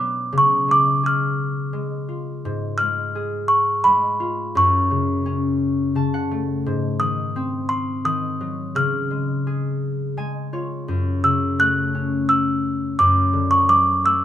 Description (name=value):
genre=children's music, lullaby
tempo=85 BPM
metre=3/4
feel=straight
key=F# minor from 10.9 s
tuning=A4 = 441 Hz
part: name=music box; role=melody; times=0.0-14.2 s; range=B5 to F#6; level=-18 LUFS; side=right 1 dB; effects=none
part: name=concert harp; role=accompaniment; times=0.0-14.2 s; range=F#2 to A5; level=-22 LUFS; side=left 2 dB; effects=none
room=light reverb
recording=minimal, uncompressed stereo recording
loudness=-18 LUFS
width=side -11 dB against mid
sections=0.0-10.9 A section; 10.9-14.2 B section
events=harp fill 5.6-6.6, 9.8-10.9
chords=0.3 C#; 4.5 F#m; 6.6 G#7; 8.7 C#; 10.9 F#m; 13.0 D/F#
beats=| 0.32 1.02 1.73 | 2.43 3.14 3.84 | 4.55 5.25 5.95 | 6.64 7.34 8.04 | 8.74 9.45 10.16 | 10.88 11.59 12.29 | 12.99 13.69